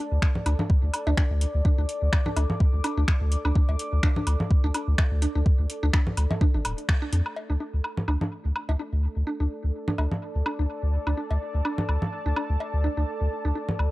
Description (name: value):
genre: minimal techno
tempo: 126 BPM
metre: 4/4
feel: swing 56% on 16ths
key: unclear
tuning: A4 = 440 Hz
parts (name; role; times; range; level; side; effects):
- mallet-like synth pluck; riff; 0.0-13.6 s; D4; -34 LUFS; right 1 dB; lush chorus, sidechain pumping, analog delay
- deep dark ambient pad; texture; 0.0-13.9 s; A4 to D6; -35 LUFS; left 1 dB; chorus, built-in reverb, sidechain pumping
- round analog bass; bass; 0.1-13.9 s; D1 to F2; -23 LUFS; equal; sidechain pumping
- booming analog drum machine; drums; 0.2-7.2 s; finger snaps, hi-hat; -32 LUFS; equal; overdrive
- electronic kick drum; drums; 0.2-7.0 s; none; -21 LUFS; equal; overdrive
- congas, woodblock and cowbell; percussion; 0.4-13.9 s; none; -30 LUFS; equal; overdrive
room: digital ambience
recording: dry, gritty hardware recording, cassette tape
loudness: -23 LUFS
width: side -18 dB against mid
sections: 0.0-7.4 A section; 7.4-13.9 B section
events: band accent 6.9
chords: 0.0 D5